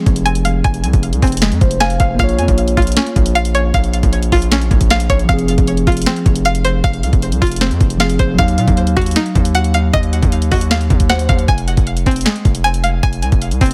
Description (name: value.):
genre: hip hop, trap.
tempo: 155 BPM.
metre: 4/4.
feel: half-time.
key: F phrygian.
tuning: A4 = 440 Hz.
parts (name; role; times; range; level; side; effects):
mellow tine electric piano; accompaniment; 0.0-11.5 s; F3 to F5; -22 LUFS; equal; none.
string-like resonator pluck; arpeggios; 0.0-13.7 s; Ab3 to Ab5; -22 LUFS; equal; chorus, digital delay.
distorted 808-style bass; bass; 0.1-13.7 s; F1 to Bb2; -19 LUFS; equal; distortion.
trap drum kit; drums; 0.1-13.7 s; finger snaps, hi-hat, kick drum, snare drum; -18 LUFS; equal; soft clipping on snare.
room: digital ambience.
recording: dense, heavily limited modern master.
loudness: -14 LUFS.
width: mono.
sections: 0.0-11.5 A section; 11.5-13.7 B section.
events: tine electric piano fill 1.4-2.2, 10.9-11.5.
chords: 0.0 Fm; 2.2 Bbm; 5.3 Fm; 8.4 Ebmadd9; 11.5 Fm.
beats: 0.26 | 0.64 1.03 1.42 1.80 | 2.19 2.58 2.97 3.35 | 3.74 4.13 4.51 4.90 | 5.29 5.68 6.06 6.45 | 6.84 7.22 7.61 8.00 | 8.39 8.77 9.16 9.55 | 9.93 10.32 10.71 11.10 | 11.48 11.87 12.26 12.64 | 13.03 13.42.